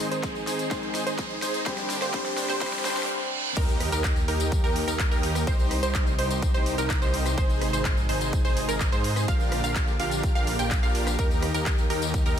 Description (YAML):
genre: EDM, festival progressive house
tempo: 126 BPM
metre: 4/4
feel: straight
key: Eb major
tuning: A4 = 442 Hz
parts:
  - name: warm baby grand piano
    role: accompaniment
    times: 0.0-3.6 s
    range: G2 to Ab4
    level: -34 LUFS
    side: left 4 dB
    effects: sidechain pumping, digital delay
  - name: lush unison pad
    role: sustained chords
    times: 0.0-12.4 s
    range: C3 to Ab4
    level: -35 LUFS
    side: equal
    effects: chorus, sidechain pumping
  - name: wide unison pluck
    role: arpeggios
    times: 0.0-12.4 s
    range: Bb4 to G5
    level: -32 LUFS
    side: right 2 dB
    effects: cassette tape, sidechain pumping, digital delay
  - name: dense compressed supersaw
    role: riff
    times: 0.0-12.4 s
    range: D4 to G5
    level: -30 LUFS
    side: right 1 dB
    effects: sidechain pumping, low-pass filter, digital delay
  - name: big-room dance drum kit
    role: drums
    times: 0.0-12.4 s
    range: crash cymbal, handclaps, hi-hat, rim click, snare drum, tambourine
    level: -33 LUFS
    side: left 1 dB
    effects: overdrive, high-pass filter on snare, high-pass filter on hats, high-pass filter on perc, high-pass filter on cymbals
  - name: riser, reverse cymbal and impact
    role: sound effects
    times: 0.0-5.5 s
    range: none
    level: -34 LUFS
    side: right 2 dB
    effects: none
  - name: electronic kick drum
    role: drums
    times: 0.2-12.2 s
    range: none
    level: -26 LUFS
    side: equal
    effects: overdrive
  - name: detuned saw bass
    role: bass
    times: 3.6-12.4 s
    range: Ab1 to Ab2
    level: -30 LUFS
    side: equal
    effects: sidechain pumping
room: light reverb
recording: high-pass filter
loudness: -23 LUFS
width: side -9 dB against mid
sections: 0.0-3.6 A section; 3.6-12.4 B section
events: build-up 0.0-3.6; drum fill 0.0-3.1; riser 0.0-3.1; filter sweep on supersaw synth 0.0-3.6; filter sweep on synth pluck 0.0-3.6; filter sweep 0.0-3.6; reverse cymbal 2.6-3.6; drop 3.6-12.4; impact 3.6-5.5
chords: 0.0 Ab; 1.7 Bb6; 3.6 Eb; 5.5 Cm; 7.4 Ab; 9.3 Bb6; 11.2 Eb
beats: 0.23 0.71 1.19 | 1.66 2.14 2.62 3.09 | 3.57 4.04 4.52 5.00 | 5.47 5.95 6.42 6.90 | 7.38 7.85 8.33 8.80 | 9.28 9.76 10.23 10.71 | 11.19 11.66 12.14